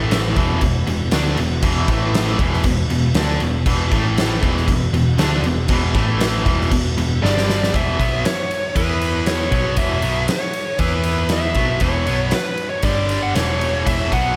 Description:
hard rock; 118 BPM; 4/4; straight; A4 = 440 Hz
tonewheel organ; sustained chords; 0.0-7.7 s; E3 to B4; -34 LUFS; equal
overdriven electric guitar; riff; 0.0-14.4 s; E2 to E4; -28 LUFS; equal; tremolo, slapback echo
tight distorted guitar; riff; 0.0-14.4 s; E2 to E4; -26 LUFS; equal; distortion
hollow-body short-scale picked electric bass; bass; 0.0-14.4 s; E1 to E2; -24 LUFS; equal
big rock drum kit; drums; 0.1-14.2 s; crash cymbal, kick drum, ride cymbal, snare drum; -23 LUFS; equal
bluesy overdriven lead guitar; melody; 7.2-14.4 s; B4 to F#5; -25 LUFS; equal; distortion, slapback echo
moderate concert hall reverb, RT60 1.9 s; big arena sound; -19 LUFS; mono
0.0-7.7 A section; 7.7-14.4 B section
drum fill 7.2-7.7
0.4 E5; 1.9 A5; 2.4 E5; 3.9 A5; 4.4 E5; 5.9 A5; 6.5 E5; 7.2 G5; 7.7 E5; 12.8 G5; 13.4 E5

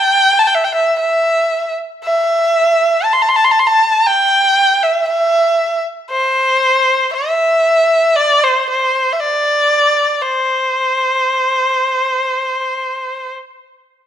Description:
chinese traditional, Chinese chamber ensemble; 58 BPM; 4/4; straight; C gong mode; A4 = 441 Hz
warm erhu; solo; 0.0-13.3 s; C5 to C6; -12 LUFS; equal
moderate recital hall reverb, RT60 1.8 s; minimal, uncompressed stereo recording; -12 LUFS; side -9 dB against mid
0.0-14.1 A section

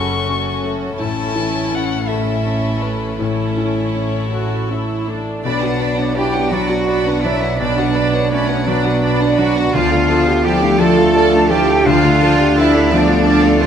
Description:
cinematic, emotional film score for orchestra; 56 BPM (dotted quarters); 6/8; rubato; B minor; A4 = 440 Hz
dark violin; melody; 0.0-5.1 s; B4 to C#6; -25 LUFS; left 7 dB
warm studio violin section; melody; 0.0-13.7 s; A4 to B5; -28 LUFS; left 2 dB
rich studio violin section; second line; 0.0-13.7 s; E4 to D5; -26 LUFS; right 3 dB
clear concert grand piano; accompaniment; 0.0-13.7 s; B1 to D5; -20 LUFS; equal
rich studio viola section; accompaniment; 0.0-13.7 s; F3 to F#4; -25 LUFS; right 1 dB
concert harp; arpeggios; 0.0-13.7 s; F#2 to D5; -24 LUFS; left 8 dB
warm studio cello section; bass; 0.0-13.7 s; F#2 to A4; -20 LUFS; right 2 dB
warm studio double bass section; bass; 0.0-13.7 s; F#1 to D2; -24 LUFS; right 3 dB
silver concert flute; second line; 5.4-13.7 s; C#5 to A5; -23 LUFS; equal
dark French horn section; sustained chords; 5.4-13.7 s; A3 to C#5; -21 LUFS; left 1 dB
dark clarinet; second line; 6.5-13.7 s; A3 to D4; -23 LUFS; right 1 dB
moderate scoring stage reverb, RT60 1.8 s; -13 LUFS; side -8 dB against mid
0.0-5.5 A section; 5.5-13.7 A section
0.0 F#m; 1.0 A; 5.5 Bm; 9.7 Dm

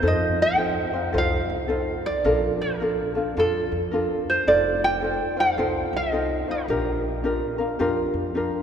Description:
Hawaiian; 108 BPM; 4/4; swing 63% on 8ths; Bb major; A4 = 440 Hz
tenor ukulele; melody; 0.0-8.3 s; A4 to G5; -24 LUFS; right 1 dB
ukulele; accompaniment; 0.0-8.6 s; D4 to C5; -24 LUFS; left 1 dB
upright bass; bass; 0.0-8.6 s; F1 to F2; -30 LUFS; equal
wet cathedral reverb, RT60 5.1 s; recorded in a church or concert hall; -21 LUFS; side -8 dB against mid
0.0-8.6 A section
0.0 F7; 2.3 Bbmaj7; 4.5 F7; 6.7 Bb6

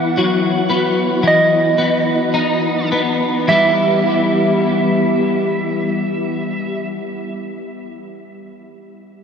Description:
rock; 51-58 BPM; 4/4; straight; E minor; A4 = 440 Hz
electric slide guitar; melody; 0.0-6.9 s; D#5 to F#5; -19 LUFS; right 2 dB; diffuse ambient delay
twelve-string electric guitar; arpeggios; 0.0-7.0 s; E3 to E4; -17 LUFS; left 1 dB; ensemble chorus, diffuse ambient delay
wet huge ambient reverb, RT60 7.6 s; dreamy mix soaked in reverb; -14 LUFS; side -7 dB against mid
0.0-3.5 A section; 3.5-8.2 B section
slowing down 0.0-3.5
0.0 B/E; 3.5 Em

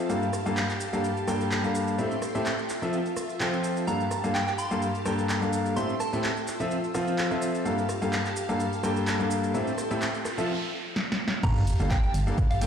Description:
piano house; 127 BPM; 4/4; swing 54% on 16ths; G dorian; A4 = 440 Hz
string machine, violins; sustained chords; 0.0-12.7 s; F4 to E6; -35 LUFS; equal; ensemble chorus, sidechain pumping
bright grand piano; riff; 0.0-12.7 s; G2 to G5; -27 LUFS; left 1 dB; sidechain pumping, ping-pong delay
punchy analog drum machine; drums; 0.1-12.7 s; crash cymbal, handclaps, hi-hat, rim click, shaker, snare drum; -33 LUFS; right 1 dB
soft synth bell; melody; 3.9-6.5, 11.4-12.7 s; F5 to C6; -34 LUFS; right 2 dB; chorus, ping-pong delay
noise sweep and sub drop; sound effects; 10.2-12.7 s; -32 LUFS; right 1 dB
organ-like FM bass; bass; 11.4-12.7 s; G1; -28 LUFS; equal; sidechain pumping
electronic kick drum; drums; 11.4-12.5 s; -25 LUFS; equal
wet plate reverb, RT60 2.1 s; played on a big sound system in a bare room, stone room reverb; -25 LUFS; side -8 dB against mid
0.0-11.4 A section; 11.4-12.7 B section
noise sweep 10.2-11.4; drum fill 11.0-11.4; drop 11.4-12.7; impact 11.4-12.7
0.1 Gm9; 2.0 Am7; 2.7 Fmaj7; 3.9 Gm9; 5.8 Am7; 6.5 Fmaj7; 7.7 Gm9; 9.5 Am7; 10.3 Fmaj7; 11.4 Gm9

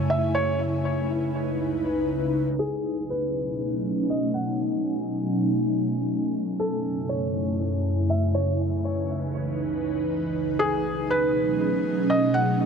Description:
hip hop; 120 BPM; 4/4; half-time; A4 = 440 Hz
felt-muted upright piano; melody; 0.0-12.6 s; G#4 to F#5; -28 LUFS; equal; ping-pong delay
ethereal airy pad; sustained chords; 0.0-12.7 s; C#2 to G#5; -24 LUFS; equal; ensemble chorus, built-in reverb
moderate huge ambient reverb, RT60 3.9 s; low-pass filter; -23 LUFS; side -6 dB against mid
0.0-2.6 A section; 2.6-10.6 B section; 10.6-12.7 A section
filter sweep 2.6-10.6
0.0 F#m9; 0.6 C#m9; 2.6 B13; 6.6 F#m9; 8.6 C#m9; 10.6 B13

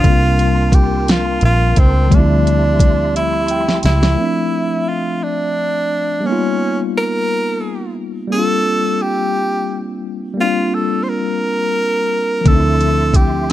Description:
slow six-eight R&B; 58 BPM (dotted quarters); 6/8; straight; D minor; A4 = 440 Hz
breathy tenor saxophone; melody; 0.0-13.5 s; C4 to C5; -18 LUFS; right 1 dB
tine electric piano; accompaniment; 0.0-13.5 s; F3 to G5; -19 LUFS; left 2 dB; slow stereo tremolo
mellow tonewheel organ; sustained chords; 0.0-4.2, 12.5-13.5 s; F3 to C6; -27 LUFS; equal; chorus vibrato, fast rotary speaker
vintage muted fingered electric bass; bass; 0.0-4.2, 12.5-13.5 s; Bb1 to D2; -16 LUFS; equal
smooth R&B drum kit; drums; 0.0-4.2, 12.5-13.5 s; hi-hat, kick drum, snare drum; -13 LUFS; equal; vintage 12-bit sampler grit
little or no reverb; -13 LUFS; side -14 dB against mid
0.0-4.2 A section; 4.2-13.5 A section
drum fill 3.1-4.2; tine electric piano fill 3.1-4.2
0.0 C7sus4; 2.1 Dm11; 4.2 Dm9; 6.2 G7alt; 8.3 C7sus4; 12.5 Dm9

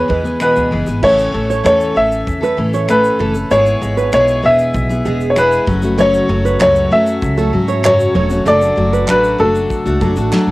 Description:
acoustic pop; 97 BPM; 4/4; straight; A major; A4 = 440 Hz
bright upright piano; melody; 0.0-10.5 s; A4 to E5; -14 LUFS; equal; cassette tape
picked steel-string acoustic guitar; accompaniment; 0.0-10.5 s; E2 to A4; -17 LUFS; left 2 dB; cassette tape
nylon-string guitar; arpeggios; 0.0-10.4 s; G#4 to E5; -22 LUFS; right 5 dB; cassette tape
upright bass; bass; 0.0-10.5 s; E1 to G#2; -20 LUFS; equal
modern studio drum kit; drums; 0.1-10.5 s; crash cymbal, finger snaps, kick drum, shaker, snare drum; -26 LUFS; equal; cassette tape
glassy FM pad; sustained chords; 7.2-10.5 s; F#3 to A4; -30 LUFS; right 2 dB
group handclap; percussion; 6.6-10.5 s; -25 LUFS; right 4 dB
light reverb; home recording on cassette; -11 LUFS; side -19 dB against mid
0.0-1.0 A section; 1.0-10.5 B section
drum fill 10.3
0.0 E; 1.0 A; 3.5 E; 5.7 F#m; 8.5 D/F#

